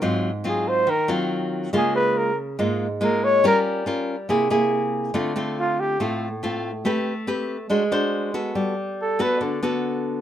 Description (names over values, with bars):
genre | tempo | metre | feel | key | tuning
bossa nova | 141 BPM | 4/4 | straight | unclear | A4 = 439 Hz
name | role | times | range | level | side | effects
nylon-string guitar | accompaniment | 0.0-10.2 s | Ab2 to B#4 | -22 LUFS | equal | none
warm flugelhorn | melody | 0.5-6.0, 9.0-9.4 s | F4 to Db5 | -20 LUFS | equal | none
room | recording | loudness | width
light reverb | minimal, uncompressed stereo recording | -20 LUFS | side -10 dB against mid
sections
0.0-5.1 A section; 5.1-10.2 A section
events
flugelhorn solo 0.0-5.1, 5.1-10.2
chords
0.0 Ab6; 1.7 Db6; 3.4 Gm7b5; 4.3 C7b13; 5.1 Dm7; 6.8 Am9; 7.7 G#7#11; 8.6 Gmaj9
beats
| 0.02 0.45 0.87 1.30 | 1.73 2.15 2.58 3.01 | 3.43 3.86 4.29 4.71 | 5.14 5.57 6.00 6.42 | 6.85 7.28 7.70 8.13 | 8.56 8.98 9.41 9.84